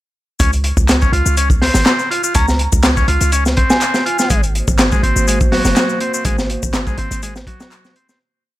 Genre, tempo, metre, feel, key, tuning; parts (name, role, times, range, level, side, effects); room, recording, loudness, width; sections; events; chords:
breakbeat, breaks; 123 BPM; 4/4; swing 54% on 16ths; Ab mixolydian; A4 = 440 Hz
combo organ; riff; 0.4-8.2 s; Gb3 to F4; -20 LUFS; left 1 dB; tube saturation, digital delay
warm 808-style bass; bass; 0.4-7.5 s; Gb1 to Db2; -17 LUFS; equal
crunchy breakbeat drum kit; drums; 0.4-8.2 s; hi-hat, kick drum, snare drum; -16 LUFS; equal
electronic shaker and handclaps; drums; 0.4-8.2 s; -22 LUFS; left 2 dB; overdrive
soft synth bell; melody; 2.4-4.4 s; Ab5 to Bb5; -23 LUFS; right 1 dB; chorus, old record sound, digital delay
dark analog pad; sustained chords; 4.3-8.2 s; Bb3 to C5; -23 LUFS; right 1 dB; chorus, sidechain pumping
little or no reverb; -12 LUFS; side -15 dB against mid
0.4-8.2 drop
drop 0.4-8.2; fade-out 5.6-8.2
0.4 Dbmaj7; 4.3 Ab9